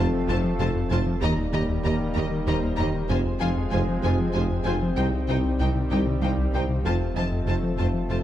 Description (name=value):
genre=cinematic, hybrid orchestral and electronic film score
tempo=64 BPM (dotted quarters)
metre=6/8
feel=straight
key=unclear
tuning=A4 = 440 Hz
part: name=clear symphonic violin section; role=melody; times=0.0-8.2 s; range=G5 to Bb5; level=-35 LUFS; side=left 3 dB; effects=none
part: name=warm symphonic violin section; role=second line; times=0.0-8.2 s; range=C5 to Eb5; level=-36 LUFS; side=left 2 dB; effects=none
part: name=clear symphonic viola section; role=accompaniment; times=0.0-8.2 s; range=Eb4 to G4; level=-35 LUFS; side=left 1 dB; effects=none
part: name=dark French horn section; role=sustained chords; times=0.0-8.2 s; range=Bb3 to F4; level=-34 LUFS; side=left 3 dB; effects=none
part: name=hollow soft pad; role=sustained chords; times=0.0-8.2 s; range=Eb3 to F5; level=-34 LUFS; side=left 1 dB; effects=chorus
part: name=warm trombone section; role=sustained chords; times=0.0-8.2 s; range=C3 to A3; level=-34 LUFS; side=right 4 dB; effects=none
part: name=round analog bass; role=riff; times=0.0-8.2 s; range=C2 to F3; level=-29 LUFS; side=left 2 dB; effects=none
part: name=mellow tuba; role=bass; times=0.0-8.2 s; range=F1 to Eb2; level=-30 LUFS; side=right 2 dB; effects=none
part: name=rich symphonic cello section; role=bass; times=0.0-8.2 s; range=C2 to F2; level=-32 LUFS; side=right 2 dB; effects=none
part: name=soft dub sub bass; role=bass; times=0.0-8.2 s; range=Eb1 to C2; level=-31 LUFS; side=equal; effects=none
part: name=warm symphonic double bass section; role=bass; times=0.0-8.2 s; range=F1 to Eb2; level=-30 LUFS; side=right 2 dB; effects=none
part: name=clear concert grand piano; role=texture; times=0.0-8.2 s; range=F4 to G6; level=-41 LUFS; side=left 4 dB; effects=tape echo
room=moderate scoring stage reverb, RT60 1.6 s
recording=dark, warm production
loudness=-22 LUFS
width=side -12 dB against mid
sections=0.0-8.2 A section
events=none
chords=0.0 F; 1.2 Eb; 3.1 Fm; 5.0 Cm; 6.8 F